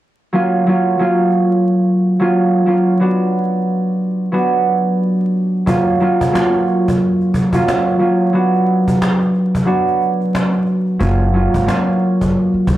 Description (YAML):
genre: hip hop, boom-bap hip-hop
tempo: 90 BPM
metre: 4/4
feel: swing 58% on 16ths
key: F# major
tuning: A4 = 440 Hz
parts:
  - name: concert harp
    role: accompaniment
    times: 0.3-12.8 s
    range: F#3 to F#4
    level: -13 LUFS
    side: right 1 dB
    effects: cassette tape, high-pass filter, low-pass filter
  - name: cajon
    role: drums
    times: 5.7-12.8 s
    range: none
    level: -22 LUFS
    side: equal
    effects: none
  - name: upright bass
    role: bass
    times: 11.0-12.8 s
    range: F#1 to C#2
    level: -17 LUFS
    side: equal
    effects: transformer saturation
room: little or no reverb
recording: vinyl crackle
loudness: -13 LUFS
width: side -14 dB against mid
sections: 0.3-11.0 A section; 11.0-12.8 B section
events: kick muted 9.7-11.0; hi-hats muted 11.0-12.8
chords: 0.3 F#maj7; 3.0 Bm; 5.7 F#maj7; 8.3 Bm; 11.0 F#maj7